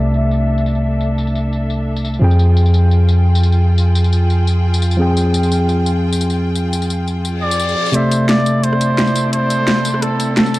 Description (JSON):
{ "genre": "liquid drum and bass", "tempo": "173 BPM", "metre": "4/4", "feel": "straight", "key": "C major", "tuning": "A4 = 442 Hz", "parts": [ { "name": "tine electric piano", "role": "accompaniment", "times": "0.0-10.6 s", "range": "C3 to G5", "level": "-17 LUFS", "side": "equal", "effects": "low-pass filter" }, { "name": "rich symphonic string section", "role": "sustained chords", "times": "0.0-10.6 s", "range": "C4 to G5", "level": "-26 LUFS", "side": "equal", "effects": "low-pass filter" }, { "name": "long sustained 808-style bass", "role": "bass", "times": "0.0-7.8 s", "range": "C2 to F2", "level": "-15 LUFS", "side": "equal", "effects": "none" }, { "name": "drum and bass drum kit", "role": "drums", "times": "0.1-10.6 s", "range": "hi-hat, rim click, snare drum, tambourine", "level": "-20 LUFS", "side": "equal", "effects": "overdrive" }, { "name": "reverse cymbal and riser", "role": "sound effects", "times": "7.4-10.6 s", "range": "none", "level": "-27 LUFS", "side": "left 3 dB", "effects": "none" }, { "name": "trumpet with cup mute", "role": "melody", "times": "7.4-10.6 s", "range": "A4 to D5", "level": "-19 LUFS", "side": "right 1 dB", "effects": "low-pass filter, dub echo" } ], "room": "light reverb", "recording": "dark, warm production, low-pass filter", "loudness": "-13 LUFS", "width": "side -17 dB against mid", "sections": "0.0-7.9 A section; 7.9-10.6 B section", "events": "filter sweep on string section 0.0-7.9, 7.9-10.6; filter sweep 0.0-7.9; reverse cymbal 7.4-7.9; build-up 7.9-10.6; filter sweep on tine electric piano 7.9-10.6", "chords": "0.0 C69; 2.2 Fmadd9; 7.9 C69", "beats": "0.31 0.66 | 1.01 1.35 1.70 2.05 | 2.39 2.74 3.09 3.43 | 3.78 4.13 4.47 4.82 | 5.17 5.51 5.86 6.21 | 6.55 6.90 7.25 7.60 | 7.94 8.29 8.64 8.98 | 9.33 9.68 10.02 10.37" }